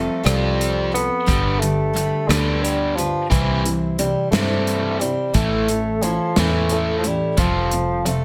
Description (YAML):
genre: folk rock and heartland rock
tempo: 59 BPM (dotted quarters)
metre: 6/8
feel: straight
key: G mixolydian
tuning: A4 = 439 Hz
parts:
  - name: mellow bassoon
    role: melody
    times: 0.0-8.2 s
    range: D3 to B3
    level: -25 LUFS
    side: equal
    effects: slapback echo
  - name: picked steel-string acoustic guitar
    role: accompaniment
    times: 0.0-8.2 s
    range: A2 to C5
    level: -29 LUFS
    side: equal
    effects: none
  - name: biting overdriven guitar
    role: riff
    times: 0.0-8.2 s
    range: F2 to F4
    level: -26 LUFS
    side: equal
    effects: none
  - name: fingered electric bass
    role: bass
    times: 0.0-8.2 s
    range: F1 to G2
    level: -26 LUFS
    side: equal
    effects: none
  - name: natural country drum kit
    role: drums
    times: 0.3-8.2 s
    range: hi-hat, kick drum, rim click, snare drum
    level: -26 LUFS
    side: equal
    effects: none
room: light reverb, small room ambience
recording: none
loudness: -20 LUFS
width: mono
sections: 0.0-8.2 A section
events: none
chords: 0.0 Fadd9; 1.3 G; 3.3 C; 5.4 A; 7.4 Fadd9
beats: 0.26 | 1.28 2.30 | 3.31 4.33 | 5.35 6.37 | 7.39